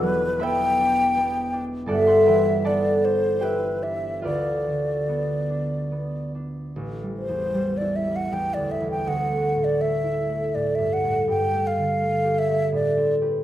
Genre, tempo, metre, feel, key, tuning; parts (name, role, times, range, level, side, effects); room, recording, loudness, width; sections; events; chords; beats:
classical, impressionist duo for flute and harp; 70-85 BPM; 3/4; rubato; A dorian; A4 = 440 Hz
mellow hollow concert flute; melody; 0.0-13.1 s; B4 to G5; -24 LUFS; left 1 dB
concert harp; accompaniment; 0.0-13.4 s; E1 to C6; -23 LUFS; equal
moderate recital hall reverb, RT60 1.4 s; -21 LUFS; side -12 dB against mid
0.0-6.8 A section; 6.8-13.4 B section
0.0 Em11; 1.9 G69; 4.2 Dm6; 6.8 A9sus4; 9.1 Dsus2; 11.3 Gsus2; 12.7 Am11
0.43 1.17 | 1.90 2.66 3.43 | 4.24 5.09 5.93 | 6.77 7.55 8.32 | 9.06 9.80 10.54 | 11.29 12.02 12.74